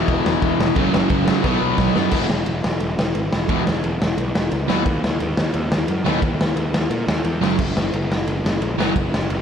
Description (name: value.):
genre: punk rock.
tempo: 176 BPM.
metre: 4/4.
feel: straight.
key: unclear.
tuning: A4 = 442 Hz.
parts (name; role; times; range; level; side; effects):
distorted electric guitar; riff; 0.0-8.9 s; E2 to B3; -25 LUFS; left 12 dB; distortion, slapback echo.
sludgy distorted guitar; riff; 0.0-8.9 s; E2 to B3; -24 LUFS; right 12 dB; overdrive.
fuzz picked electric bass; bass; 0.1-9.4 s; E1 to A#2; -24 LUFS; equal; overdrive.
raw garage drum kit; drums; 0.1-9.4 s; crash cymbal, kick drum, ride cymbal, snare drum; -20 LUFS; equal; none.
room: light reverb, studio reverb.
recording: none.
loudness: -17 LUFS.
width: side -8 dB against mid.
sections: 0.0-2.1 A section; 2.1-9.4 B section.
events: drum fill 1.4-2.1.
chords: 0.0 E5; 0.8 F#5; 1.4 B5; 2.1 E5; 4.7 B/D#; 7.4 F#5.